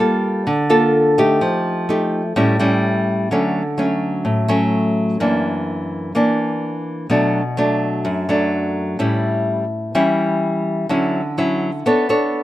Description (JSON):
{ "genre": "bossa nova", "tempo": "127 BPM", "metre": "4/4", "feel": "straight", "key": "D major from 3.3 s", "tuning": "A4 = 440 Hz", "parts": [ { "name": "nylon-string guitar", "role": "solo", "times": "0.0-12.4 s", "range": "F#2 to C#5", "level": "-16 LUFS", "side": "equal", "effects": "none" } ], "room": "light reverb", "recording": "none", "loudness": "-16 LUFS", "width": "side -15 dB against mid", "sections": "0.0-3.3 A section; 3.3-12.4 B section", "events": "none", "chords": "0.0 Gm9; 1.4 F9; 2.4 A7; 3.3 Dmaj7; 5.2 F#7b13; 7.1 Bm7; 9.0 A7; 10.9 Dmaj9; 11.8 Bm9" }